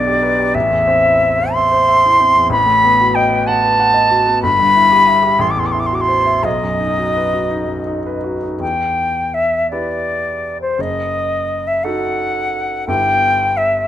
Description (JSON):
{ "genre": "classical, romantic duo for flute and grand piano", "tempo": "54-64 BPM (dotted quarters)", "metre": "6/8", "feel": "rubato", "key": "E minor", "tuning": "A4 = 439 Hz", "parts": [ { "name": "silver concert flute", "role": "melody", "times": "0.0-13.9 s", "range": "C5 to D6", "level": "-13 LUFS", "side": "left 1 dB", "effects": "none" }, { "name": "clear grand piano", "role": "accompaniment", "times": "0.0-13.9 s", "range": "F#1 to F#5", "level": "-20 LUFS", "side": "equal", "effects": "none" } ], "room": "light reverb", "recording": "close, detailed microphones", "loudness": "-13 LUFS", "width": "side -11 dB against mid", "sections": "0.0-8.6 A section; 8.6-13.9 B section", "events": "none", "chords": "0.0 G/B; 0.5 Am; 2.5 B7/A; 4.4 Em/G; 5.4 F#m7b5/A; 6.5 B; 8.6 Em; 10.8 D#dim/F#; 12.9 Em/G" }